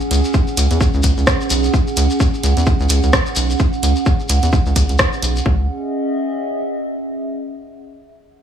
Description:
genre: minimal techno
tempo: 129 BPM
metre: 4/4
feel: swing 58% on 16ths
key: C# minor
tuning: A4 = 439 Hz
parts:
  - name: shekere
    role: percussion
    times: 0.0-5.4 s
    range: none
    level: -25 LUFS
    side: left 4 dB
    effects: none
  - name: warbly tape-like pad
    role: texture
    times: 0.0-7.3 s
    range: C#4 to F#5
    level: -22 LUFS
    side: right 3 dB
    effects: chorus, built-in reverb, sidechain pumping
  - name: rubbery square bass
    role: bass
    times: 0.1-5.7 s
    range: B1 to E2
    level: -16 LUFS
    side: equal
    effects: sidechain pumping
  - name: house drum kit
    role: drums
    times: 0.1-5.3 s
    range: hi-hat, rim click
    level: -20 LUFS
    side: right 1 dB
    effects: overdrive
  - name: electronic kick drum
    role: drums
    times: 0.3-5.6 s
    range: none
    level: -17 LUFS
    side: equal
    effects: overdrive
room: light reverb, digital ambience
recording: none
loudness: -14 LUFS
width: side -8 dB against mid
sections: 0.0-5.5 A section; 5.5-7.3 B section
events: none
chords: 0.0 C#5; 5.5 C#m

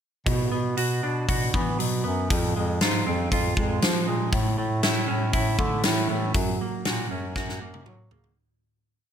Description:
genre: quiet-loud alternative rock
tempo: 119 BPM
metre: 4/4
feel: straight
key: unclear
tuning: A4 = 440 Hz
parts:
  - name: semi-hollow electric guitar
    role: arpeggios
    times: 0.3-8.4 s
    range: A2 to F#4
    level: -28 LUFS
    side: right 3 dB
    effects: wide subtle chorus
  - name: bright bass clarinet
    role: bass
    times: 0.3-8.3 s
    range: F2 to F#3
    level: -27 LUFS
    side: left 1 dB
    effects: none
  - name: big rock drum kit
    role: drums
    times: 0.3-8.4 s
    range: hi-hat, kick drum, snare drum, toms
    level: -26 LUFS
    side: equal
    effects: none
room: little or no reverb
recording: none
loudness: -22 LUFS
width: side -8 dB against mid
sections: 0.3-8.4 verse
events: fade-out 6.3-8.4; drum fill 7.4-8.4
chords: 0.3 Bm; 2.3 Fm; 4.3 A; 6.3 F#

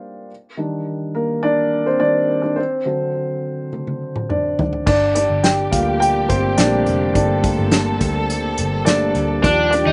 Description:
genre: piano-driven pop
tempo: 105 BPM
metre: 4/4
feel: straight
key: G minor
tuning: A4 = 440 Hz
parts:
  - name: dark upright piano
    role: accompaniment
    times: 0.0-9.9 s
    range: D3 to G5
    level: -20 LUFS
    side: equal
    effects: none
  - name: unplugged drum kit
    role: drums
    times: 3.7-9.9 s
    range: crash cymbal, hi-hat, kick drum, snare drum, toms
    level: -23 LUFS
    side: equal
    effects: none
  - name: dark studio string section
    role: sustained chords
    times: 4.9-9.9 s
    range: Bb2 to A4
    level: -28 LUFS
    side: equal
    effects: none
  - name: vintage muted picked electric bass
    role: bass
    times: 4.9-9.9 s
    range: F1 to Eb2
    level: -25 LUFS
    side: equal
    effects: none
  - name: raw garage guitar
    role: riff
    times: 9.4-9.9 s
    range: D4 to Eb4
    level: -20 LUFS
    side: equal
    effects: overdrive
room: little or no reverb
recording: recorded outdoors, with no room sound, nothing above 10.4 kHz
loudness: -18 LUFS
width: mono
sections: 0.0-4.9 A section; 4.9-9.9 B section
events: upright piano solo 0.0-4.9, 4.9-9.9; drum fill 3.7-4.9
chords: 0.3 Ebmaj7; 2.6 D7; 4.9 Gmadd9

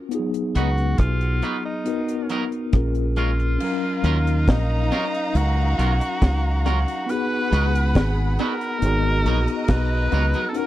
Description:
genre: lovers rock reggae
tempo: 69 BPM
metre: 4/4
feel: straight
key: Eb minor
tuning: A4 = 440 Hz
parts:
  - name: mellow tine electric piano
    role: accompaniment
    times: 0.0-10.7 s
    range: Gb3 to F5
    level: -27 LUFS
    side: left 3 dB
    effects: medium stereo tremolo
  - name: deep reggae drum kit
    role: drums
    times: 0.1-10.7 s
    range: crash cymbal, hi-hat, kick drum, rim click, snare drum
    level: -22 LUFS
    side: equal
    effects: tape echo
  - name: bright tenor saxophone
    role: melody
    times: 0.6-10.7 s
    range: Eb4 to Cb5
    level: -27 LUFS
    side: equal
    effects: tape echo
  - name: twangy electric guitar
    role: stabs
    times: 0.6-10.4 s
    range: F#3 to Cb5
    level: -28 LUFS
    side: right 3 dB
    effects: none
  - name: deep dub fingered electric bass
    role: bass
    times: 0.6-10.3 s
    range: Ab1 to Eb2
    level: -20 LUFS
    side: equal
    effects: none
  - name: muted studio string section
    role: second line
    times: 3.6-10.7 s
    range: Db4 to Cb6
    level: -30 LUFS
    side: right 1 dB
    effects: none
room: small room ambience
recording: dry, close 1970s-style studio recording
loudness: -19 LUFS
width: side -14 dB against mid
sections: 0.0-3.6 A section; 3.6-10.7 B section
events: none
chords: 0.1 Db9sus4; 1.9 Bmaj7; 2.7 Bbm7; 3.6 Ebm9; 7.1 Db9sus4; 8.8 Abm9

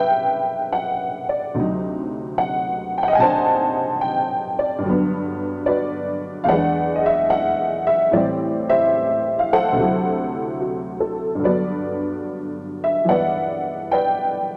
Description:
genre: solo jazz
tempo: 73 BPM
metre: 4/4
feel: swing 69% on 8ths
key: G major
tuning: A4 = 440 Hz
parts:
  - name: honky-tonk upright piano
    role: solo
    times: 0.0-14.6 s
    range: D2 to A5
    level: -21 LUFS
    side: equal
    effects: none
room: moderate studio reverb, RT60 0.7 s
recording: none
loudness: -21 LUFS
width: mono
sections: 0.0-11.4 A section; 11.4-14.6 B section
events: none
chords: 0.0 Cmaj9; 1.6 D7b9; 4.8 Gmaj7; 6.5 E7; 8.1 Am7; 9.8 D9; 11.4 Gmaj7

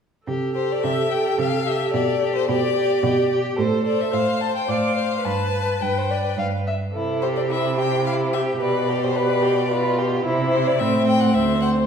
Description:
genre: quick classical-period movement for string quartet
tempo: 109 BPM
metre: 3/4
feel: straight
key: C major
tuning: A4 = 441 Hz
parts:
  - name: rich violin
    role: second line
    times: 0.3-11.9 s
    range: C4 to F5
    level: -24 LUFS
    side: left 2 dB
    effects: none
  - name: rich viola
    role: accompaniment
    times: 0.3-11.9 s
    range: C4 to D5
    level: -25 LUFS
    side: right 3 dB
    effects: none
  - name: rich cello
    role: bass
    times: 0.3-11.9 s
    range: D2 to C3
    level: -24 LUFS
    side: right 3 dB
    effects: none
  - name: clear violin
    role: melody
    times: 0.6-11.7 s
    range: C5 to A5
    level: -25 LUFS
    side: left 6 dB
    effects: none
room: wet recital hall reverb, RT60 1.7 s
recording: heard from further back in the room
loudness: -19 LUFS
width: side -7 dB against mid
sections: 0.3-11.9 A section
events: none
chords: 0.3 C5; 1.9 G/B; 3.6 F/A; 5.2 G; 6.9 C; 8.6 G/B; 10.3 C; 10.8 Am; 11.4 D7(no3)

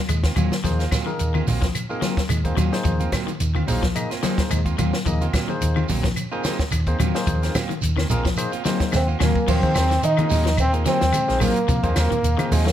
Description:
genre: afrobeat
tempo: 109 BPM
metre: 4/4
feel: swing 54% on 16ths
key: Eb dorian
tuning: A4 = 445 Hz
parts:
  - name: electric guitar at the edge of break-up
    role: arpeggios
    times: 0.0-12.7 s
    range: Eb3 to Ab3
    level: -28 LUFS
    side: left 8 dB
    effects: slapback echo
  - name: hollow-body short-scale fingered electric bass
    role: bass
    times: 0.1-12.7 s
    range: Bb1 to Eb3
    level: -22 LUFS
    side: equal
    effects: none
  - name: compact cocktail drum kit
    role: drums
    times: 0.1-12.7 s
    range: crash cymbal, hi-hat, kick drum, snare drum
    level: -26 LUFS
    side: left 1 dB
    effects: none
  - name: claves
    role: percussion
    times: 0.1-12.5 s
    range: none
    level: -37 LUFS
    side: left 3 dB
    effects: none
  - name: shekere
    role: percussion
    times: 0.1-12.7 s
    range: none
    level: -32 LUFS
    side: right 4 dB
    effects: none
  - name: electric guitar at the edge of break-up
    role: stabs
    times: 0.2-12.7 s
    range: Gb3 to F4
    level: -30 LUFS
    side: right 7 dB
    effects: none
  - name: congas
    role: percussion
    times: 0.4-12.7 s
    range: none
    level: -28 LUFS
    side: right 2 dB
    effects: none
  - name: barky tine electric piano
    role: accompaniment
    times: 0.6-12.6 s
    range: Bb3 to Ab5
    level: -30 LUFS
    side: left 2 dB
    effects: wide subtle chorus
  - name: clear trombone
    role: melody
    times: 9.0-12.7 s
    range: Ab3 to Eb4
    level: -23 LUFS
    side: equal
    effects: none
  - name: felt-muted upright piano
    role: second line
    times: 9.0-12.7 s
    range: Ab4 to Eb5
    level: -28 LUFS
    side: right 5 dB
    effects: none
room: light reverb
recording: none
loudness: -19 LUFS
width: side -11 dB against mid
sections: 0.0-9.5 A section; 9.5-12.7 B section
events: tine electric piano fill 8.4-9.5; drum fill 8.9-9.5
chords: 0.0 Ebm69

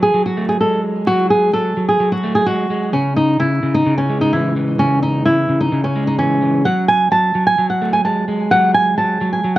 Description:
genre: hip hop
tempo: 129 BPM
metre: 4/4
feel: half-time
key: unclear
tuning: A4 = 440 Hz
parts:
  - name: flamenco guitar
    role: melody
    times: 0.0-9.6 s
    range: C#4 to A5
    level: -15 LUFS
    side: right 1 dB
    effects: low-pass filter
  - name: electric guitar at the edge of break-up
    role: accompaniment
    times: 0.0-9.6 s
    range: C#3 to A3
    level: -18 LUFS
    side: equal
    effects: low-pass filter
room: moderate recital hall reverb, RT60 1.4 s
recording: vinyl crackle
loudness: -14 LUFS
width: side -15 dB against mid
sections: 0.0-6.7 A section; 6.7-9.6 B section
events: none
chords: 0.0 F#madd9; 2.9 C#m; 6.7 F#madd9

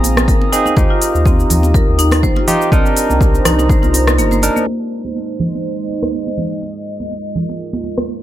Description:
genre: afro house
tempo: 123 BPM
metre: 4/4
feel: swing 55% on 16ths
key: unclear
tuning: A4 = 437 Hz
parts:
  - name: dark analog pad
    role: sustained chords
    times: 0.0-8.2 s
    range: Ab3 to Eb6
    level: -23 LUFS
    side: right 2 dB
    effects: chorus, phaser, sidechain pumping
  - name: barky tine electric piano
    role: stabs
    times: 0.0-4.6 s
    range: C4 to Bb4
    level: -19 LUFS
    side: right 1 dB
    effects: sidechain pumping, tape echo
  - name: warm sub bass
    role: bass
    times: 0.0-4.5 s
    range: G1 to Eb2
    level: -16 LUFS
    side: equal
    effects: sidechain pumping
  - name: deep house drum kit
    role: drums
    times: 0.0-8.1 s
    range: cabasa, hi-hat, rim click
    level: -20 LUFS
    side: left 1 dB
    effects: low-pass filter on perc, low-pass filter on hats, low-pass filter on snare, low-pass filter on room
  - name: congas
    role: percussion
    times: 0.0-8.1 s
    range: none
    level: -23 LUFS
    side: right 3 dB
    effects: none
  - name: marimba with medium hard mallets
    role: arpeggios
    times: 0.3-4.7 s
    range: Bb3 to C5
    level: -20 LUFS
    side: left 1 dB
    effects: sidechain pumping, tape echo
  - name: electronic kick drum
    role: drums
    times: 0.3-3.8 s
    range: none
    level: -14 LUFS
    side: equal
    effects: none
room: little or no reverb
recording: low-pass filter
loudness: -12 LUFS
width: side -13 dB against mid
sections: 0.0-4.7 A section; 4.7-8.2 B section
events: kick drops out 4.2-4.7; filter sweep 4.7-8.2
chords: 0.0 Bb7sus4; 0.8 Ebadd9; 2.7 Cm7; 4.7 Ab; 6.6 Bb7sus4

